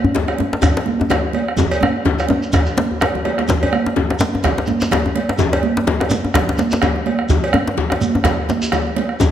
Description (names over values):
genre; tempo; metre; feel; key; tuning
west african traditional, West African drum ensemble; 126 BPM; 4/4; swing 56% on 16ths; none; none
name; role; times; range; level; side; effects
djembe; percussion; 0.0-9.3 s; none; -22 LUFS; left 5 dB; none
djembe; percussion; 0.0-9.3 s; none; -20 LUFS; left 2 dB; none
congas; percussion; 0.1-9.3 s; none; -22 LUFS; right 4 dB; none
bombo; percussion; 0.3-9.3 s; none; -22 LUFS; right 3 dB; none
cowbell; percussion; 0.3-9.1 s; none; -26 LUFS; right 2 dB; none
shekere; percussion; 0.6-9.3 s; none; -27 LUFS; right 2 dB; none
room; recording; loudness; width
wet recital hall reverb, RT60 1.8 s; none; -15 LUFS; side -10 dB against mid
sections
0.0-3.5 A section; 3.5-9.3 B section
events
drum fill 1.6-3.5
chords
none